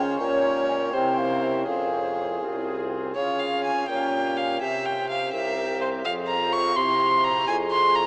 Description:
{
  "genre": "classical, baroque-style sonata movement with continuo",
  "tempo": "83 BPM (dotted quarters)",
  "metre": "6/8",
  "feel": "straight",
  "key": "F minor",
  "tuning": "A4 = 441 Hz",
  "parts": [
    { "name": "warm violin", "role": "second line", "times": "0.0-8.1 s", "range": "Ab4 to Db6", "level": "-24 LUFS", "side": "equal", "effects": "none" },
    { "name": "pipe organ, foundations", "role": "accompaniment", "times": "0.0-8.1 s", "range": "C2 to C5", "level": "-31 LUFS", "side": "equal", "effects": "none" },
    { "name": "mellow bassoon", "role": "bass", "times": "0.0-8.1 s", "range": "C2 to Db3", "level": "-29 LUFS", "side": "equal", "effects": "none" },
    { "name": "mellow hollow baroque flute", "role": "melody", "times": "0.2-8.1 s", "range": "G4 to Ab5", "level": "-29 LUFS", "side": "equal", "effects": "none" }
  ],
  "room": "wet huge ambient reverb, RT60 8.6 s",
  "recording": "in a vast, echoing space, small speaker sound",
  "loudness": "-22 LUFS",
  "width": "side -27 dB against mid",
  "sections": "0.0-3.2 A section; 3.2-8.1 A section",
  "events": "none",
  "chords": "0.2 Gdim/Bb; 0.9 C7; 1.7 Fm; 3.2 Db; 3.9 Gdim/Bb; 4.6 C7; 6.0 Fm; 6.8 C; 7.5 Fm",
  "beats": "| 0.20 0.93 | 1.67 2.42 | 3.16 3.89 | 4.61 5.33 | 6.05 6.76 | 7.48"
}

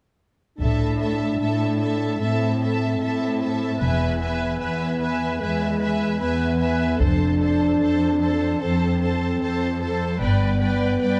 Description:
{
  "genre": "cinematic, epic orchestral film score",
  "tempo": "75 BPM",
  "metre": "4/4",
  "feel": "straight",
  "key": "A minor",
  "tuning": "A4 = 440 Hz",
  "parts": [
    { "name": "warm symphonic violin section", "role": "melody", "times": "0.6-11.2 s", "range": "G5 to A5", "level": "-36 LUFS", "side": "equal", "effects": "none" },
    { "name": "rich symphonic violin section", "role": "second line", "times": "0.6-11.2 s", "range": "C5 to E5", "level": "-34 LUFS", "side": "equal", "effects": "none" },
    { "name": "warm symphonic viola section", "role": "accompaniment", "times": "0.6-11.2 s", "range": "A4 to B4", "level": "-33 LUFS", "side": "equal", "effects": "none" },
    { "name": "dark French horn section", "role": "sustained chords", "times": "0.6-11.2 s", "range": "G#3 to D4", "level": "-26 LUFS", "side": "equal", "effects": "none" },
    { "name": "warm symphonic cello section", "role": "bass", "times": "0.6-11.2 s", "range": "E2 to A2", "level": "-27 LUFS", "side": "equal", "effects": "none" },
    { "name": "warm symphonic double bass section", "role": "bass", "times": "0.6-10.9 s", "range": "E1 to A1", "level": "-29 LUFS", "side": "equal", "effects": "none" },
    { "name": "taiko ensemble", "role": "drums", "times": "0.6-2.2, 7.0-8.6 s", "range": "none", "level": "-28 LUFS", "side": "equal", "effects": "none" }
  ],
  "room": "light reverb",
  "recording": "none",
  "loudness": "-22 LUFS",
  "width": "mono",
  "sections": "0.6-11.2 A section",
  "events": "none",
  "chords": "0.6 Am; 3.8 E; 7.0 F; 10.2 G",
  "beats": "| 0.61 1.41 2.21 3.01 | 3.81 4.61 5.41 6.21 | 7.01 7.81 8.61 9.41 | 10.21 11.01"
}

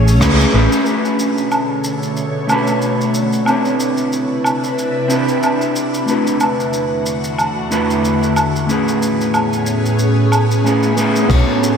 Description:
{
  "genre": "sunset chillout",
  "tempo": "92 BPM",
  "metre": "4/4",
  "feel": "swing 57% on 16ths",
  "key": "unclear",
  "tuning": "A4 = 440 Hz",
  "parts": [
    { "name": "ethereal airy pad", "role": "sustained chords", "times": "0.0-11.8 s", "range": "E2 to C#5", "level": "-18 LUFS", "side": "equal", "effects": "ensemble chorus, built-in reverb, phaser" },
    { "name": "fretless electric bass", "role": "bass", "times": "0.0-0.7, 11.3-11.4 s", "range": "A1 to C#2", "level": "-13 LUFS", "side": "equal", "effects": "none" },
    { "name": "vintage brush drum kit", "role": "drums", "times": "0.1-11.8 s", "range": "crash cymbal, hi-hat, rim click, shaker, woodblock", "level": "-22 LUFS", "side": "right 1 dB", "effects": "none" },
    { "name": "mellow electric guitar", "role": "accompaniment", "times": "0.2-11.8 s", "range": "A3 to C#5", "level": "-17 LUFS", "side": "equal", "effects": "auto-pan, diffuse ambient delay" },
    { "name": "electronic kick drum", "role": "drums", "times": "0.2-0.4, 11.3-11.4 s", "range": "none", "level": "-18 LUFS", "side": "equal", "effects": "overdrive" }
  ],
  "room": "wet lush hall reverb, RT60 2.8 s",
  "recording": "dreamy mix soaked in reverb",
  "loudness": "-14 LUFS",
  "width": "side -7 dB against mid",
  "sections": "0.9-11.3 A section",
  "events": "band accent 0.2-0.5",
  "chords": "0.0 Amaj9; 0.9 Bm9; 3.5 Cmaj9; 6.1 E9sus4; 8.4 Amaj9",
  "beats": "0.21 | 0.86 1.52 2.17 2.82 | 3.47 4.12 4.78 5.43 | 6.08 6.73 7.39 8.04 | 8.69 9.34 9.99 10.65 | 11.30"
}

